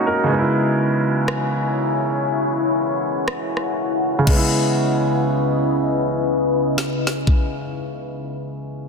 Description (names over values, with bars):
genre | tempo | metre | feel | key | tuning
contemporary R&B | 60 BPM | 4/4 | swing 58% on 16ths | C# minor | A4 = 442 Hz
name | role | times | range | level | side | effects
clear concert grand piano | accompaniment | 0.0-8.9 s | B2 to A#4 | -21 LUFS | right 2 dB | low-pass filter
deep dark ambient pad | sustained chords | 0.0-7.6 s | C#3 to A#5 | -22 LUFS | left 3 dB | chorus, built-in reverb, low-pass filter
trap drum kit | drums | 1.3-7.5 s | crash cymbal, kick drum, rim click, snare drum | -22 LUFS | left 1 dB | soft clipping on snare
room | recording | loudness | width
light reverb, digital ambience | dense, heavily limited modern master | -17 LUFS | side -5 dB against mid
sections
0.0-4.3 A section; 4.3-8.3 B section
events
filter sweep 0.0-4.3; kick muted 2.3-4.3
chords
0.3 C#m7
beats
| 0.27 1.27 2.27 3.27 | 4.27 5.27 6.27 7.27